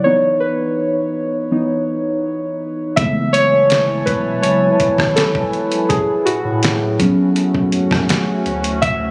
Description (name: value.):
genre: contemporary R&B.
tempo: 82 BPM.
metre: 4/4.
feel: straight.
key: C# minor.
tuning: A4 = 440 Hz.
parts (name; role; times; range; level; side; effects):
muted felt-like synth keys; accompaniment; 0.0-9.1 s; E3 to E5; -18 LUFS; equal; chorus.
deep dark ambient pad; sustained chords; 3.5-9.1 s; C#3 to A5; -26 LUFS; equal; chorus, built-in reverb, sidechain pumping.
saturated sub bass; bass; 3.0-9.1 s; E1 to A2; -25 LUFS; equal; none.
dusty soul sampler-style drum kit; drums; 3.0-9.0 s; hi-hat, kick drum, rim click, snare drum; -23 LUFS; equal; none.
room: light reverb, digital ambience.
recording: recorded on a phone in the room, club ambience.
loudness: -17 LUFS.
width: mono.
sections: 0.0-9.1 A section.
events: synth keys solo 0.0-9.1.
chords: 0.0 C#m9/E; 3.0 F#m11; 5.9 A69; 8.5 Dmaj9.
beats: | 0.05 0.78 1.51 2.24 | 2.97 3.71 4.44 5.17 | 5.90 6.63 7.36 8.10 | 8.83.